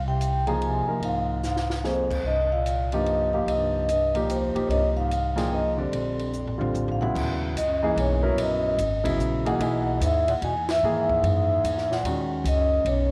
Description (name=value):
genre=modal jazz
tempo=147 BPM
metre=3/4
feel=swing 65% on 8ths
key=Eb phrygian from 7.1 s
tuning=A4 = 440 Hz
part: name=upright bass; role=bass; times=0.0-13.1 s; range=Ab1 to G#2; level=-31 LUFS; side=equal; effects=none
part: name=vibraphone with soft mallets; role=melody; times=0.1-13.1 s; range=C5 to Bb5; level=-28 LUFS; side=equal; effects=none
part: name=mellow bass clarinet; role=second line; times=0.1-13.1 s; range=Eb2 to Db3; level=-35 LUFS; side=equal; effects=none
part: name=compact cocktail drum kit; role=drums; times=0.2-13.0 s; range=crash cymbal, hi-hat, kick drum, ride cymbal, snare drum, toms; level=-39 LUFS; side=equal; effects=none
part: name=warm grand piano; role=accompaniment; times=0.5-13.1 s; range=Db3 to Bb4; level=-31 LUFS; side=equal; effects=none
room=light reverb, small room reverb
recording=none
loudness=-25 LUFS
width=mono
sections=0.0-7.1 A section; 7.1-13.1 B section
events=drum fill 1.4-1.8, 6.3-7.1; band accent 10.6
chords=0.0 Fm/C; 2.2 Cm7; 4.7 Fmadd9/C; 5.9 Bb; 7.1 Ebm7; 9.6 E; 12.0 Ebm7